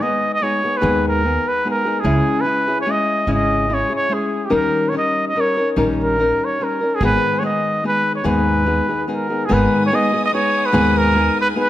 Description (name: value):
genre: mexican folk, mariachi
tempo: 145 BPM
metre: 3/4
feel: swing 54% on 8ths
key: G# harmonic minor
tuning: A4 = 440 Hz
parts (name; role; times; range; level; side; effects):
- warm trumpet; melody; 0.0-11.7 s; G4 to D#5; -19 LUFS; right 1 dB; none
- nylon-string guitar; accompaniment; 0.0-11.7 s; G#2 to A#4; -19 LUFS; left 2 dB; none
- upright bass; bass; 0.8-11.3 s; G#1 to D#2; -22 LUFS; right 1 dB; none
- rich studio violin section; sustained chords; 9.5-11.7 s; B3 to D#6; -30 LUFS; right 2 dB; none
room: moderate recital hall reverb, RT60 1.4 s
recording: none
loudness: -15 LUFS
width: side -13 dB against mid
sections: 0.0-9.5 A section; 9.5-11.7 A section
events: none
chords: 0.0 G#m; 2.1 C#m; 4.5 D#7; 7.0 G#m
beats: 0.00 0.42 | 0.83 1.24 1.64 | 2.05 2.46 2.87 | 3.28 3.69 4.11 | 4.53 4.94 5.36 | 5.77 6.19 6.60 | 7.01 7.42 7.84 | 8.25 8.67 9.08 | 9.50 9.92 10.33 | 10.74 11.15 11.56